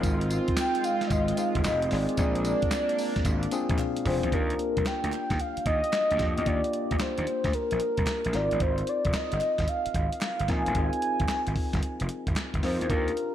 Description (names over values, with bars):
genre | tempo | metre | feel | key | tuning
R&B, new jack swing | 112 BPM | 4/4 | swing 66% on 16ths | Eb major | A4 = 439 Hz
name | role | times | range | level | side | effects
tine electric piano | accompaniment | 0.0-13.3 s | Bb3 to F5 | -33 LUFS | left 3 dB | slow stereo tremolo
chorused pulse-width pad | sustained chords | 0.0-4.3 s | Ab3 to F4 | -32 LUFS | right 2 dB | none
gritty slap bass | bass | 0.0-13.1 s | F1 to F2 | -30 LUFS | equal | overdrive
dusty soul sampler-style drum kit | drums | 0.0-13.3 s | handclaps, hi-hat, kick drum, snare drum, tambourine, toms | -30 LUFS | equal | none
mellow horn-like synth lead | melody | 0.6-13.3 s | Bb4 to Ab5 | -29 LUFS | equal | chorus
group handclap | percussion | 0.6-12.5 s | none | -47 LUFS | right 3 dB | none
room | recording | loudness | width
moderate plate reverb, RT60 2.0 s | dreamy mix soaked in reverb | -25 LUFS | side -11 dB against mid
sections
0.0-4.3 A section; 4.3-13.3 B section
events
tine electric piano fill 3.5-4.3; drum fill 3.8-4.3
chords
0.0 Ab6; 2.2 Bb7; 4.3 Ebmaj7; 8.3 Ab6